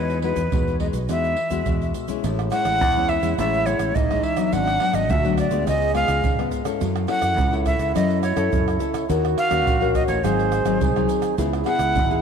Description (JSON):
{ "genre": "samba and choro", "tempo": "105 BPM", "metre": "4/4", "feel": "straight", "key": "unclear", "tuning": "A4 = 440 Hz", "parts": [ { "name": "breathy bright jazz flute", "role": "melody", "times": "0.0-12.2 s", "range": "B4 to F#5", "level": "-24 LUFS", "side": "equal", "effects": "none" }, { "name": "nylon-string guitar", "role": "accompaniment", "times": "0.0-12.2 s", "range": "G#2 to A#4", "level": "-26 LUFS", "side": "left 13 dB", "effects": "none" }, { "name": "fingered electric bass", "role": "bass", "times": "0.0-12.2 s", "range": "G#1 to F#2", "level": "-25 LUFS", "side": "equal", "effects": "none" }, { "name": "egg shaker, pandeiro, surdo and tamborim", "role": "percussion", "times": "0.1-12.2 s", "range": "none", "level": "-26 LUFS", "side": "right 4 dB", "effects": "none" }, { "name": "breathy trombone", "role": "second line", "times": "2.2-12.2 s", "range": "D4 to G#4", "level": "-26 LUFS", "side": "right 10 dB", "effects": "none" } ], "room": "moderate plate reverb, RT60 3.3 s", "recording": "1960s-style stereo with parts hard left and right", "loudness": "-19 LUFS", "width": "side -7 dB against mid", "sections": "0.0-2.2 A section; 2.2-12.2 B section", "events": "none", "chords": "0.0 Emaj9; 2.2 Amaj7; 4.5 G#m7b5; 5.7 C#7; 6.8 F#m7; 9.1 D#m7; 10.2 G#7; 11.4 C#m7", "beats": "0.52 1.09 1.67 | 2.24 2.81 3.38 3.95 | 4.52 5.09 5.67 6.24 | 6.81 7.38 7.95 8.52 | 9.09 9.66 10.24 10.81 | 11.38 11.95" }